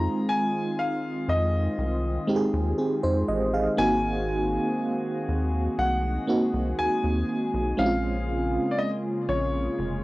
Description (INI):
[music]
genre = R&B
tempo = 60 BPM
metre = 4/4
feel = straight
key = unclear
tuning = A4 = 440 Hz
[part]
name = clear concert grand piano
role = melody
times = 0.0-10.0 s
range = Db5 to Bb5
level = -29 LUFS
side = left 2 dB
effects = cassette tape, tape echo
[part]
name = FM electric piano with tremolo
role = accompaniment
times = 0.0-10.0 s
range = Ab3 to F5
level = -26 LUFS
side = right 1 dB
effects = cassette tape
[part]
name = warm analog pad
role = sustained chords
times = 0.0-10.0 s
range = Db3 to Ab4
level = -34 LUFS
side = left 2 dB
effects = lush chorus, cassette tape
[part]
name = rubbery square bass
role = bass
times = 0.0-10.0 s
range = F1 to F2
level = -28 LUFS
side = equal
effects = none
[sound]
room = moderate studio ambience, RT60 0.5 s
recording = home recording on cassette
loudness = -23 LUFS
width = side -19 dB against mid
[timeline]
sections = 0.0-10.0 A section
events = none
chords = 0.0 Fm7; 3.8 Ab7; 7.8 Bbm7